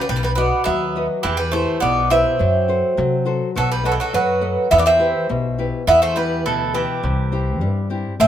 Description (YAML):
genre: greek folk, Greek bouzouki band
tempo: 104 BPM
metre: 2/4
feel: straight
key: E minor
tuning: A4 = 440 Hz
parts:
  - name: Greek bouzouki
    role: melody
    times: 0.0-8.3 s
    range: G4 to E5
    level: -19 LUFS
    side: right 1 dB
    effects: none
  - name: Greek bouzouki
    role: second line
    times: 0.0-8.3 s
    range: E3 to C4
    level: -23 LUFS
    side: right 6 dB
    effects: none
  - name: nylon-string guitar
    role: accompaniment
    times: 0.0-8.3 s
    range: B2 to D#5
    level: -24 LUFS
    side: left 4 dB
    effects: none
  - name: upright bass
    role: bass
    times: 0.1-8.3 s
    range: A1 to C3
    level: -23 LUFS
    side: left 1 dB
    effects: none
room: light reverb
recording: minimal, uncompressed stereo recording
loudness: -16 LUFS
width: side -10 dB against mid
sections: 0.0-5.9 A section; 5.9-8.3 B section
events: none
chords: 0.1 B; 1.2 Em; 2.4 F#dim; 3.6 B7; 4.7 Em; 7.0 C